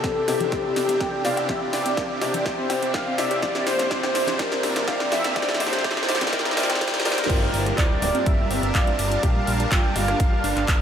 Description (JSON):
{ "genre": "progressive house", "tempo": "124 BPM", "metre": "4/4", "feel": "straight", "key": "unclear", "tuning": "A4 = 441 Hz", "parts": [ { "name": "warm velvety synth lead", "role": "melody", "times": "0.0-10.8 s", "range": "G4 to G5", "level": "-26 LUFS", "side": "equal", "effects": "chorus, sidechain pumping, diffuse ambient delay" }, { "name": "supersaw pad", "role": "sustained chords", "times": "0.0-10.8 s", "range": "C3 to A5", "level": "-31 LUFS", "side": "right 1 dB", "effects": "analog chorus, sidechain pumping" }, { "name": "wide unison pluck", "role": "arpeggios", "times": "0.0-10.8 s", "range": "G3 to C5", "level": "-32 LUFS", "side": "right 1 dB", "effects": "sidechain pumping, diffuse ambient delay" }, { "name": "warm baby grand piano", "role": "stabs", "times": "0.0-10.8 s", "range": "G2 to F5", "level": "-28 LUFS", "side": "left 2 dB", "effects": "wide subtle chorus, sidechain pumping, diffuse ambient delay" }, { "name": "fat analog bass", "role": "bass", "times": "0.0-10.8 s", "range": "D1 to E2", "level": "-31 LUFS", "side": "equal", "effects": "none" }, { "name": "big-room dance drum kit", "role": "drums", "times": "0.0-10.8 s", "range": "crash cymbal, handclaps, hi-hat, rim click, snare drum", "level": "-27 LUFS", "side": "equal", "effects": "studio reverb" }, { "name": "electronic kick drum", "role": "drums", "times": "0.0-10.8 s", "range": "none", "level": "-24 LUFS", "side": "equal", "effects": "studio reverb" }, { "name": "woodblock, congas and cowbell", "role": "percussion", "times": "0.0-7.3 s", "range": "none", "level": "-39 LUFS", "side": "left 3 dB", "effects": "none" }, { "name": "riser and swell", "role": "sound effects", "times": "0.1-7.3 s", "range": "none", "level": "-34 LUFS", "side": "equal", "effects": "none" } ], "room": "wet cathedral reverb, RT60 5.1 s", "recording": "dreamy mix soaked in reverb, high-pass filter", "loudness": "-20 LUFS", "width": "side -8 dB against mid", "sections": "0.0-7.3 A section; 7.3-10.8 B section", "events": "build-up 0.0-7.3; drum fill 0.0-7.3; filter sweep on synth pluck 0.0-7.3; filter sweep on grand piano 0.0-7.3; filter sweep on soft synth lead 0.0-7.3; filter sweep 0.0-7.3; riser 0.1-7.3; swell 6.3-7.3; drop 7.3-10.8", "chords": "0.0 Cadd9; 3.4 Bb; 7.3 Gm7" }